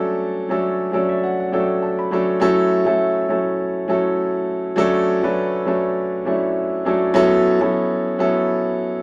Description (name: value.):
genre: soul.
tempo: 101 BPM.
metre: 4/4.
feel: swing 54% on 16ths.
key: unclear.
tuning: A4 = 440 Hz.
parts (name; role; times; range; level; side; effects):
clear concert grand piano; solo; 0.0-9.0 s; F#3 to B5; -20 LUFS; equal; none.
room: moderate studio ambience, RT60 0.5 s.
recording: band playing live in one room.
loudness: -19 LUFS.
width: mono.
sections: 0.0-7.1 A section; 7.1-9.0 B section.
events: grand piano fill 0.6-2.4.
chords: 0.0 Dmaj7; 2.4 F#m7; 4.8 Dmaj7; 7.1 B9sus4.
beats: | 0.04 0.63 1.23 1.82 | 2.41 3.00 3.60 4.19 | 4.78 5.37 5.96 6.55 | 7.15 7.74 8.33 8.92.